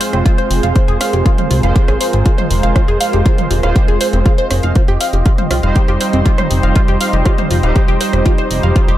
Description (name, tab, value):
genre	melodic techno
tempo	120 BPM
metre	4/4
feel	straight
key	F minor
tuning	A4 = 441 Hz
part	dark analog pad	sustained chords	0.0-9.0 s	F4 to G5	-26 LUFS	equal	chorus, sidechain pumping
part	tight sequenced synth	arpeggios	0.0-9.0 s	C4 to F5	-20 LUFS	equal	chorus, phaser, sidechain pumping, analog delay
part	analog synth brass	stabs	0.0-9.0 s	G3 to C5	-20 LUFS	right 2 dB	chorus, cassette tape, sidechain pumping, dub echo
part	house drum kit	drums	0.0-9.0 s	hi-hat, rim click, toms	-22 LUFS	right 1 dB	sidechain pumping on hats, sidechain pumping on toms
part	warbly tape-like pad	texture	0.0-9.0 s	C4 to C6	-25 LUFS	right 1 dB	chorus, built-in reverb, sidechain pumping
part	plucky analog bass	bass	0.1-9.0 s	Eb1 to C2	-15 LUFS	equal	sidechain pumping
part	electronic kick drum	drums	0.3-8.9 s	none	-12 LUFS	equal	none
room	light reverb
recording	echo-heavy mix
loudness	-11 LUFS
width	side -13 dB against mid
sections	0.0-9.0 A section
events	none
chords	0.0 Fm; 4.8 Cm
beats	0.26 | 0.76 1.26 1.76 2.26 | 2.76 3.26 3.76 4.26 | 4.76 5.26 5.76 6.26 | 6.76 7.26 7.76 8.26 | 8.76